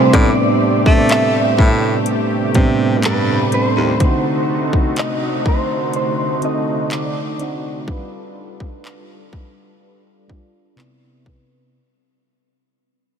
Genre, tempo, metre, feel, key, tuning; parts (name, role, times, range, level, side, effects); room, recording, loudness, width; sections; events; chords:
contemporary R&B; 62 BPM; 4/4; straight; A4 = 440 Hz
direct-recorded clean electric guitar; melody; 0.0-10.7 s; B4 to E5; -21 LUFS; right 1 dB; ensemble chorus, low-pass filter, analog delay
soft electric-piano-like synth keys; accompaniment; 0.0-11.8 s; A2 to D5; -19 LUFS; right 2 dB; chorus, tremolo, low-pass filter
warm analog pad; sustained chords; 0.0-11.7 s; C3 to B4; -23 LUFS; equal; chorus, tremolo, sidechain pumping, low-pass filter
clear baritone saxophone; bass; 0.1-3.9 s; Eb2 to A3; -19 LUFS; equal
trap drum kit; drums; 0.1-11.5 s; handclaps, hi-hat, kick drum; -19 LUFS; equal
wet huge ambient reverb, RT60 7.2 s; dreamy mix soaked in reverb; -14 LUFS; side -7 dB against mid
0.0-11.7 A section
fade-out 0.0-11.7; filter sweep 0.0-11.7
0.1 Am11; 4.0 D7b9; 7.9 G7; 10.8 Cmaj9